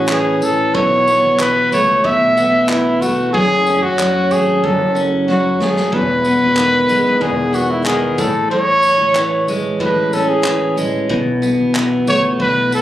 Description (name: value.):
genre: acoustic pop.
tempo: 93 BPM.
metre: 4/4.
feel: straight.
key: unclear.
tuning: A4 = 440 Hz.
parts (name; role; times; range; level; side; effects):
breathy trumpet; melody; 0.0-12.8 s; E4 to E5; -15 LUFS; equal; none.
picked steel-string acoustic guitar; accompaniment; 0.0-12.8 s; E2 to C#4; -16 LUFS; equal; none.
upright bass; bass; 0.0-12.8 s; E1 to C#2; -26 LUFS; equal; none.
natural country drum kit; drums; 0.1-12.8 s; handclaps, kick drum, snare drum, tambourine; -26 LUFS; equal; none.
room: light reverb.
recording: recorded on a phone in the room, club reverb.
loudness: -13 LUFS.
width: side -13 dB against mid.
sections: 0.0-12.8 A section.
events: drum fill 5.3-5.9.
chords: 0.0 A; 0.8 B7sus4; 3.3 F#m; 5.9 Emaj7; 8.2 Amaj7; 11.1 B7sus4.